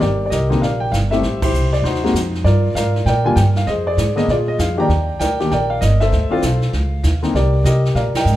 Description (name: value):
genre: jazz piano trio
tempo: 197 BPM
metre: 4/4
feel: swing 64% on 8ths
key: C minor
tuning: A4 = 441 Hz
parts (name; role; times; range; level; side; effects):
- warm grand piano; melody; 0.0-8.4 s; C3 to Bb5; -18 LUFS; left 1 dB; none
- upright bass; bass; 0.0-8.4 s; G1 to C3; -17 LUFS; equal; none
- jazz brush drum kit; drums; 0.0-8.4 s; brushed snare drum, hi-hat, kick drum, ride cymbal, snare drum; -26 LUFS; right 2 dB; none
room: light reverb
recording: none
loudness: -14 LUFS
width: side -14 dB against mid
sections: 0.0-8.4 A section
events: band accent 1.4, 8.1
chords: 0.0 Cm9; 1.2 Am7; 1.8 Ab7 (rootless); 2.4 Gm7; 3.7 Fm; 4.3 Bb7; 4.9 Ebmaj7; 6.1 Dm9; 6.7 Dbadd9; 7.3 Cm9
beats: | 0.01 0.32 0.62 0.92 | 1.23 1.53 1.84 2.14 | 2.45 2.75 3.06 3.36 | 3.67 3.98 4.28 4.58 | 4.89 5.20 5.50 5.81 | 6.11 6.42 6.72 7.03 | 7.33 7.64 7.95 8.25